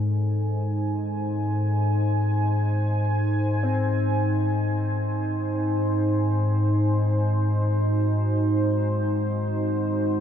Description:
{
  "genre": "dark ambient drone",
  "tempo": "free time",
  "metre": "none",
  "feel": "none",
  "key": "unclear",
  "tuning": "A4 = 442 Hz",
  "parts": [
    { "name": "deep dark ambient pad", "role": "sustained chords", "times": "0.0-10.2 s", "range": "D#4 to G#5", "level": "-26 LUFS", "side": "right 1 dB", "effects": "chorus, built-in reverb" },
    { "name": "analog drone", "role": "drone", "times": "0.0-10.2 s", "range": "G#2", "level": "-23 LUFS", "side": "left 1 dB", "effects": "chorus" },
    { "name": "bronze singing bowl", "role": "texture", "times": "0.0-10.2 s", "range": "A4", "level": "-48 LUFS", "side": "right 6 dB", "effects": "none" },
    { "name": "warm grand piano", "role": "arpeggios", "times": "3.6-10.2 s", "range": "C4", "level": "-35 LUFS", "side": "left 4 dB", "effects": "tape echo" }
  ],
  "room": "wet huge ambient reverb, RT60 8.9 s",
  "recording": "dark, warm production",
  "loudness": "-22 LUFS",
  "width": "side -9 dB against mid",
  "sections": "0.0-10.2 A section",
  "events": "filter sweep on synth drone 0.0-10.2",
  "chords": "0.0 Am",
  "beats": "free time"
}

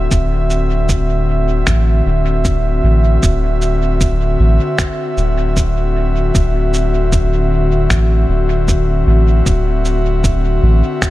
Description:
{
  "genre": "ambient dub",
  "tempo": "77 BPM",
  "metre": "4/4",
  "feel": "swing 57% on 16ths",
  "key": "D mixolydian",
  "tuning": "A4 = 441 Hz",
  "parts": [
    { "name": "airy breathy pad", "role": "sustained chords", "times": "0.0-11.1 s", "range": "D3 to E5", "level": "-18 LUFS", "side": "left 1 dB", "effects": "chorus" },
    { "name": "soft dub sub bass", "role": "bass", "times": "0.0-10.8 s", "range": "D1 to A1", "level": "-14 LUFS", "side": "equal", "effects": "none" },
    { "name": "electronic kick drum", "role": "drums", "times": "0.1-11.1 s", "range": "none", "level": "-16 LUFS", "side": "equal", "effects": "small room ambience" },
    { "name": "electronic shaker and finger snaps", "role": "drums", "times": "0.1-11.1 s", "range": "none", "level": "-22 LUFS", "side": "right 1 dB", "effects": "small room ambience, dub echo" }
  ],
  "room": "little or no reverb",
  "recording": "none",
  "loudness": "-12 LUFS",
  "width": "side -16 dB against mid",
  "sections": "0.0-11.1 A section",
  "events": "none",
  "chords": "0.0 D9",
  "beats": "| 0.11 0.89 1.67 2.45 | 3.23 4.01 4.79 5.57 | 6.35 7.12 7.90 8.68 | 9.46 10.24 11.02"
}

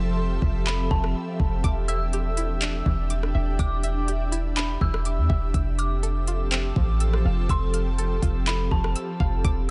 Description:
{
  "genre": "hip hop, atmospheric cloud-rap",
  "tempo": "123 BPM",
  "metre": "4/4",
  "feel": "half-time",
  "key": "unclear",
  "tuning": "A4 = 440 Hz",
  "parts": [
    { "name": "dark detuned synth bell", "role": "melody", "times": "0.0-9.4 s", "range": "A5 to E6", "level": "-36 LUFS", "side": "equal", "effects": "chorus, low-pass filter, tape echo" },
    { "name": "ethereal airy pad", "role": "sustained chords", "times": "0.0-9.7 s", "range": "F3 to E5", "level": "-34 LUFS", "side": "equal", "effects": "ensemble chorus, built-in reverb, sidechain pumping" },
    { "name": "warm 808-style bass", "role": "bass", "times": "0.0-9.7 s", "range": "E1 to E2", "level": "-27 LUFS", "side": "equal", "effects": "none" },
    { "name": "drifting glass-harmonics texture", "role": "texture", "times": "0.0-9.7 s", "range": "E4 to E6", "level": "-45 LUFS", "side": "equal", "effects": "chorus, built-in reverb" },
    { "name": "smooth R&B drum kit", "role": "drums", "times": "0.4-9.6 s", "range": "handclaps, hi-hat, kick drum, rim click", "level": "-28 LUFS", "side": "equal", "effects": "overdrive" },
    { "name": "string-like resonator pluck", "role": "arpeggios", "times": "1.6-9.7 s", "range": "E3 to F6", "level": "-39 LUFS", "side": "equal", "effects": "chorus, phaser, low-pass filter, tape echo" }
  ],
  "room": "little or no reverb",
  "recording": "nothing above 10.9 kHz",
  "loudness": "-25 LUFS",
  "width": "mono",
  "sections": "0.0-9.4 A section",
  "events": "break 0.0-1.6",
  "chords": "0.0 Fmaj7; 1.6 Em7; 5.5 Fmaj7",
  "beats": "0.18 0.66 1.15 | 1.64 2.13 2.62 3.10 | 3.59 4.08 4.57 5.05 | 5.54 6.03 6.52 7.01 | 7.49 7.98 8.47 8.96 | 9.45"
}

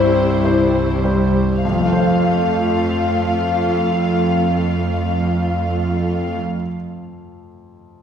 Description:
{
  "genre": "cinematic, emotional film score for orchestra",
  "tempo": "52 BPM",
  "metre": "4/4",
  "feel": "rubato",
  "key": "F major",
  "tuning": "A4 = 440 Hz",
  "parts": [
    { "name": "dark studio violin section", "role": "melody", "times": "0.0-6.4 s", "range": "C5 to F5", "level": "-22 LUFS", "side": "left 4 dB", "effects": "none" },
    { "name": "bright baby grand piano", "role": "accompaniment", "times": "0.0-8.0 s", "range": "F2 to F5", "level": "-21 LUFS", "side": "left 2 dB", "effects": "none" },
    { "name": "dark symphonic viola section", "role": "accompaniment", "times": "0.0-6.4 s", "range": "G3 to F4", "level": "-23 LUFS", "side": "right 2 dB", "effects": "none" },
    { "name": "rich studio cello section", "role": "bass", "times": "0.0-6.4 s", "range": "C2 to F2", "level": "-20 LUFS", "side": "right 2 dB", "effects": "none" }
  ],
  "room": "wet scoring stage reverb, RT60 1.9 s",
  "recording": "heard from further back in the room",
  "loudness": "-15 LUFS",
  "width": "side -8 dB against mid",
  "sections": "0.0-1.6 A section; 1.6-6.2 B section",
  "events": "slowing down 0.0-1.6",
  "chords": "0.0 C; 1.6 F",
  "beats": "0.43 | 1.63 2.79 3.92 5.07"
}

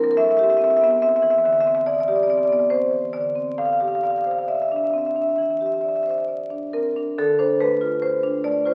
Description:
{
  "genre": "classical, contemporary piece for solo marimba",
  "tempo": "66-73 BPM",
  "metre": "4/4",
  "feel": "rubato",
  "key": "unclear",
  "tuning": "A4 = 439 Hz",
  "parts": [
    { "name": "marimba with medium hard mallets", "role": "solo", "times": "0.0-8.7 s", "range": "A2 to F5", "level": "-21 LUFS", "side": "equal", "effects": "none" }
  ],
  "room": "wet recital hall reverb, RT60 1.5 s",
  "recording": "very old 78 rpm record, vinyl crackle",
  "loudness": "-21 LUFS",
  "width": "mono",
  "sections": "0.0-7.2 A section; 7.2-8.7 B section",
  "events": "none",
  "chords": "0.2 Am7; 3.6 A7sus4; 7.2 Dm",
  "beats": "| 0.18 1.01 1.85 2.71 | 3.59 4.49 5.39 6.28 | 7.18 8.03"
}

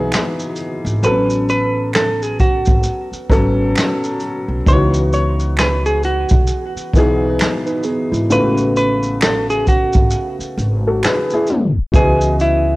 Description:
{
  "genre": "lo-fi hip hop",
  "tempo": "66 BPM",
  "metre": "4/4",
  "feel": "swing 60% on 16ths",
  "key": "C# minor",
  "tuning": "A4 = 445 Hz",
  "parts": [
    { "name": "dark upright piano", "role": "accompaniment", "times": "0.0-12.8 s", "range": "C#3 to D#5", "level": "-19 LUFS", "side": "left 1 dB", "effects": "cassette tape, low-pass filter" },
    { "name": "upright bass", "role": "bass", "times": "0.0-12.8 s", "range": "G#1 to C#2", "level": "-20 LUFS", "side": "equal", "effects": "none" },
    { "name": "vintage brush drum kit", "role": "drums", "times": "0.1-12.6 s", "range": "finger snaps, hi-hat, kick drum, shaker, snare drum", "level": "-16 LUFS", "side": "equal", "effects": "vintage 12-bit sampler grit, cassette tape" },
    { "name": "finger snaps", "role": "percussion", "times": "0.1-11.3 s", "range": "none", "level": "-27 LUFS", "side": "right 4 dB", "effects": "none" },
    { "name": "vintage hollow-body jazz guitar", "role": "melody", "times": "1.0-12.8 s", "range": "E4 to C#5", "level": "-19 LUFS", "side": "right 1 dB", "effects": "low-pass filter, cassette tape, analog delay" },
    { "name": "mellow tine electric piano", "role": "second line", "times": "7.7-8.6 s", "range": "G#3 to B4", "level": "-22 LUFS", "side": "right 2 dB", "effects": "auto-pan, low-pass filter, cassette tape, analog delay" }
  ],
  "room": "small room ambience",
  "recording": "home recording on cassette, tape stop",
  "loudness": "-14 LUFS",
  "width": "side -20 dB against mid",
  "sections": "0.0-11.9 A section",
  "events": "tape stop 11.5-11.9",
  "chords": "0.0 C#m11; 1.0 A69; 4.7 C#m11; 8.3 A69; 11.9 C#m11",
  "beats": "0.12 | 1.03 1.94 2.85 3.76 | 4.67 5.58 6.48 7.39 | 8.30 9.21 10.12 11.03 | 11.94"
}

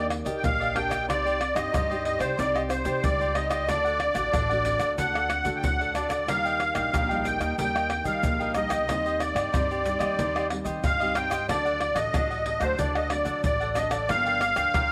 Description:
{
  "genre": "samba and choro",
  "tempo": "92 BPM",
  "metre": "4/4",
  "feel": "straight",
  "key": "unclear",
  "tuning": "A4 = 440 Hz",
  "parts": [
    { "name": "musette accordion", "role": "melody", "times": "0.0-14.9 s", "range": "C5 to G5", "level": "-28 LUFS", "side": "equal", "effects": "none" },
    { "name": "cavaquinho", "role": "accompaniment", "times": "0.0-14.9 s", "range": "D4 to G5", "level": "-37 LUFS", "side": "equal", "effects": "none" },
    { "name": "nylon-string guitar", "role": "accompaniment", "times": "0.0-14.9 s", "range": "G2 to D5", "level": "-38 LUFS", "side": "equal", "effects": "none" },
    { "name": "upright bass", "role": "bass", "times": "0.0-14.9 s", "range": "G1 to Eb3", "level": "-36 LUFS", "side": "equal", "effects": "none" },
    { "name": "pandeiro, tamborim, egg shaker and surdo", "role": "percussion", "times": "0.1-14.9 s", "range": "none", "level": "-33 LUFS", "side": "equal", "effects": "none" }
  ],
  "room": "light reverb, small room ambience",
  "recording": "none",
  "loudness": "-26 LUFS",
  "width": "mono",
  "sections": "0.0-14.9 A section",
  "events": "none",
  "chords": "0.0 Ebmaj7; 1.1 Cmadd9; 3.7 D; 6.3 Eb; 8.9 Cm/Eb; 11.5 D; 14.1 Gm7",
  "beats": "0.44 | 1.09 1.74 2.38 3.04 | 3.69 4.33 4.99 5.63 | 6.29 6.94 7.59 8.24 | 8.89 9.54 10.19 10.84 | 11.49 12.14 12.79 13.44 | 14.10 14.75"
}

